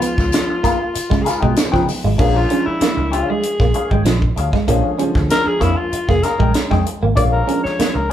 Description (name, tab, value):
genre	funk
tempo	96 BPM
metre	4/4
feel	straight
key	unclear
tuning	A4 = 440 Hz
part	growling alto saxophone	melody	0.0-8.1 s	Eb4 to D5	-20 LUFS	left 2 dB	none
part	electric guitar at the edge of break-up	riff	0.0-8.0 s	F3 to C#4	-22 LUFS	right 4 dB	spring reverb
part	dark upright piano	stabs	0.0-8.1 s	C#3 to D4	-25 LUFS	right 1 dB	none
part	tight funk drum kit	drums	0.0-8.0 s	crash cymbal, hi-hat, kick drum, snare drum	-20 LUFS	equal	none
part	tambourine	percussion	0.0-2.0 s	none	-33 LUFS	left 4 dB	none
part	clean electric guitar	accompaniment	0.2-8.1 s	D4 to G5	-24 LUFS	left 5 dB	wah
part	vintage muted fingered electric bass	bass	0.2-8.1 s	F1 to Db3	-20 LUFS	equal	none
room	moderate large studio reverb, RT60 0.9 s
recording	band playing live in one room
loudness	-14 LUFS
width	side -11 dB against mid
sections	0.0-2.2 A section; 2.2-8.1 B section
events	alto saxophone solo 2.2-8.1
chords	0.0 Db9; 2.2 Bb7#9